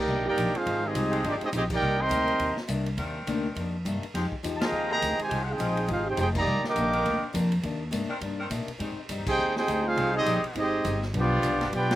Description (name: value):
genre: jazz, big band swing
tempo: 206 BPM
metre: 4/4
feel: swing 60% on 8ths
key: C minor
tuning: A4 = 441 Hz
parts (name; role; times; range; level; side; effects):
- mellow trumpet section; melody; 0.0-7.2, 9.3-11.9 s; Bb3 to D6; -26 LUFS; right 1 dB; slapback echo
- mellow trombone section; second line; 0.0-2.6, 4.6-7.2, 9.3-12.0 s; C3 to Ab4; -32 LUFS; right 3 dB; none
- upright bass; bass; 0.0-12.0 s; F1 to Bb2; -30 LUFS; equal; none
- picked acoustic archtop guitar; accompaniment; 0.1-11.9 s; G2 to G4; -36 LUFS; left 5 dB; slapback echo
- swinging big-band drum kit; drums; 0.4-12.0 s; crash cymbal, hi-hat, kick drum, ride cymbal, snare drum; -37 LUFS; equal; none
- clear saxophone section; sustained chords; 1.1-12.0 s; Eb3 to Bb4; -36 LUFS; left 1 dB; none
room: little or no reverb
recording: recorded outdoors, with no room sound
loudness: -25 LUFS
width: side -14 dB against mid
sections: 0.0-12.0 A section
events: band accent 1.7, 4.6, 6.3, 9.2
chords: 0.0 Cm9; 0.7 Fm9; 1.8 Cm9; 4.1 Fm9; 6.5 Cm9; 8.8 Abmaj7; 11.1 G7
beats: 0.08 0.37 | 0.66 0.95 1.24 1.53 | 1.82 2.11 2.40 2.69 | 2.98 3.27 3.56 3.85 | 4.14 4.43 4.72 5.01 | 5.30 5.59 5.88 6.17 | 6.47 6.76 7.05 7.34 | 7.63 7.92 8.21 8.51 | 8.80 9.09 9.38 9.68 | 9.97 10.26 10.55 10.85 | 11.14 11.43 11.72